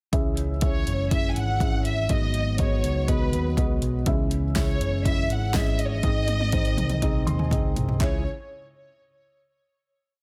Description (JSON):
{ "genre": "piano-driven pop", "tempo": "122 BPM", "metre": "4/4", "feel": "straight", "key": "C# minor", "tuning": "A4 = 441 Hz", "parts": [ { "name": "felt-muted upright piano", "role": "accompaniment", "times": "0.1-8.2 s", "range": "C#2 to B#5", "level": "-32 LUFS", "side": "equal", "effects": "none" }, { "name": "mellow tonewheel organ", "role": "sustained chords", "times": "0.1-8.2 s", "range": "C#3 to G#5", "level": "-39 LUFS", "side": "equal", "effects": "none" }, { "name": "overdriven picked electric bass", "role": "bass", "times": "0.1-8.2 s", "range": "F#1 to D#2", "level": "-29 LUFS", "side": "equal", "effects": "none" }, { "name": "deep house drum kit", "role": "drums", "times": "0.1-8.1 s", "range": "handclaps, hi-hat, kick drum, snare drum, toms", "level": "-28 LUFS", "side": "equal", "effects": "none" }, { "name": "warm studio violin section", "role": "melody", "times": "0.6-8.2 s", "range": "B4 to G#5", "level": "-33 LUFS", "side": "equal", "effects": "none" } ], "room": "little or no reverb", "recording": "dense, heavily limited modern master", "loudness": "-24 LUFS", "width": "mono", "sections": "0.1-8.0 verse; 8.0-10.0 final chord", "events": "drum fill 6.0-8.0; felt piano fill 7.0-8.0", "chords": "0.1 C#m; 2.1 G#m7; 4.1 C#m; 6.0 G#; 8.0 C#m" }